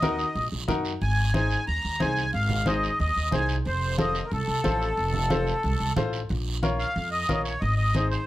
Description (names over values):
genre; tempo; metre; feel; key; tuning
latin, cumbia; 182 BPM; 4/4; straight; Bb minor; A4 = 442 Hz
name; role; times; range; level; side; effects
accordion; melody; 0.0-8.3 s; A4 to Bb5; -27 LUFS; equal; light tremolo tuning
bright upright piano; accompaniment; 0.0-8.2 s; Eb4 to Db5; -29 LUFS; left 3 dB; none
upright bass; bass; 0.0-8.1 s; F1 to Gb2; -27 LUFS; equal; none
congas; percussion; 0.0-8.1 s; none; -31 LUFS; equal; none
guiro; percussion; 0.0-8.3 s; none; -38 LUFS; right 6 dB; none
room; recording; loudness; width
light reverb; none; -23 LUFS; side -15 dB against mid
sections
0.0-6.3 A section; 6.3-8.3 B section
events
none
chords
0.0 Ebm; 1.0 Ab; 3.7 F; 6.3 Bbm; 7.6 Ab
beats
0.02 0.35 0.68 | 1.01 1.34 1.67 2.00 | 2.33 2.66 2.99 3.32 | 3.65 3.98 4.31 4.64 | 4.97 5.30 5.63 5.96 | 6.29 6.62 6.95 7.28 | 7.61 7.95